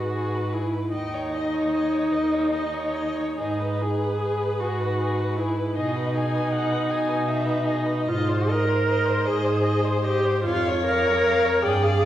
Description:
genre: classical, slow romantic movement for string quartet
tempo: 45-54 BPM (dotted quarters)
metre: 6/8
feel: rubato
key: G# minor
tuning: A4 = 440 Hz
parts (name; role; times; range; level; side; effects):
- muted violin; melody; 0.0-12.1 s; A#4 to G#5; -32 LUFS; left 5 dB; none
- muted violin; second line; 0.0-12.1 s; G#4 to G5; -32 LUFS; left 1 dB; none
- muted viola; accompaniment; 0.0-12.1 s; D#4 to Bb4; -24 LUFS; right 1 dB; none
- muted cello; bass; 0.0-12.1 s; D#2 to B2; -27 LUFS; right 1 dB; none
room: wet recital hall reverb, RT60 1.5 s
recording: heard from further back in the room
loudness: -21 LUFS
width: side -12 dB against mid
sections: 0.0-12.1 A section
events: none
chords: 0.0 G#m; 0.9 D#7(no3); 3.4 G#m; 5.8 G#m/B; 8.1 Ab; 10.5 Db/F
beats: | 0.94 2.14 | 3.39 4.62 | 5.76 6.89 | 8.07 9.27 | 10.46 11.64

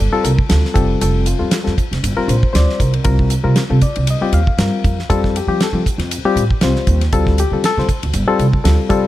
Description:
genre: electric jazz fusion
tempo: 118 BPM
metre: 4/4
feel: swing 55% on 16ths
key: unclear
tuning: A4 = 440 Hz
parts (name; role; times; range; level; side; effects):
- reed electric piano; accompaniment; 0.0-9.1 s; G3 to F5; -18 LUFS; left 4 dB; none
- upright bass; bass; 0.0-9.1 s; F1 to F3; -16 LUFS; right 1 dB; none
- damped 70s drum kit; drums; 0.2-9.0 s; hi-hat, kick drum, ride cymbal, snare drum; -19 LUFS; right 1 dB; none
room: little or no reverb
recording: none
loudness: -13 LUFS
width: side -14 dB against mid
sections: 0.0-9.1 A section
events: none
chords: 0.0 G7sus4; 0.8 F; 2.0 Gm7; 3.1 Cm7; 5.1 F; 7.1 Dm7; 8.1 G7sus4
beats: 0.50 | 1.01 1.52 2.03 2.54 | 3.05 3.56 4.07 4.58 | 5.09 5.60 6.11 6.62 | 7.13 7.63 8.14 8.65

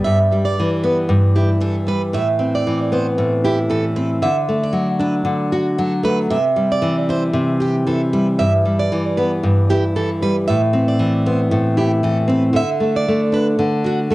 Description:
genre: acoustic pop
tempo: 115 BPM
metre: 4/4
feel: swing 55% on 16ths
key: G major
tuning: A4 = 441 Hz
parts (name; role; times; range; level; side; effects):
- nylon-string guitar; accompaniment; 0.0-14.1 s; G2 to G4; -16 LUFS; equal; cassette tape
- picked plugged-in steel-string acoustic guitar; arpeggios; 0.0-14.1 s; F#4 to E5; -22 LUFS; right 3 dB; cassette tape, tape echo
room: moderate small room reverb, RT60 0.6 s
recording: home recording on cassette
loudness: -15 LUFS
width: side -18 dB against mid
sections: 0.1-14.1 A section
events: none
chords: 0.1 G6; 2.1 Amadd9; 4.2 D; 6.3 C; 8.4 G6; 10.5 Amadd9; 12.6 D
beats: | 0.05 0.57 1.09 1.61 | 2.14 2.66 3.18 3.70 | 4.22 4.74 5.27 5.79 | 6.31 6.83 7.35 7.87 | 8.39 8.91 9.43 9.95 | 10.47 10.99 11.51 12.03 | 12.55 13.07 13.59 14.11

